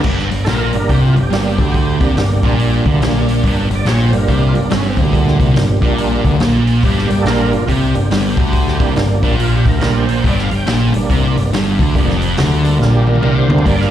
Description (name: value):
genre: blues rock power trio and southern rock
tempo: 141 BPM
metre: 4/4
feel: swing 63% on 8ths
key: G minor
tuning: A4 = 441 Hz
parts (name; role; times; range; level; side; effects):
- thick fuzz guitar; riff; 0.0-13.9 s; F2 to D3; -16 LUFS; equal; distortion
- growling picked electric bass; bass; 0.0-13.9 s; F1 to D2; -17 LUFS; equal; overdrive
- vintage drum kit; drums; 0.0-13.9 s; crash cymbal, hi-hat, kick drum, snare drum, toms; -18 LUFS; equal; none
- overdriven tonewheel organ; sustained chords; 0.4-13.9 s; Bb2 to G5; -20 LUFS; right 4 dB; slow rotary speaker, chorus vibrato
room: little or no reverb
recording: live gig heard through the venue's PA, recital hall reverb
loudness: -12 LUFS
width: side -11 dB against mid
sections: 0.1-13.9 A section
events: tonewheel organ solo 0.1-13.9; drum fill 12.8-13.7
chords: 0.1 Gm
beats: | 0.05 0.47 0.90 1.32 | 1.75 2.17 2.59 3.02 | 3.44 3.87 4.29 4.71 | 5.14 5.56 5.99 6.41 | 6.84 7.26 7.69 8.11 | 8.54 8.97 9.39 9.82 | 10.24 10.67 11.10 11.53 | 11.95 12.38 12.80 13.23 | 13.66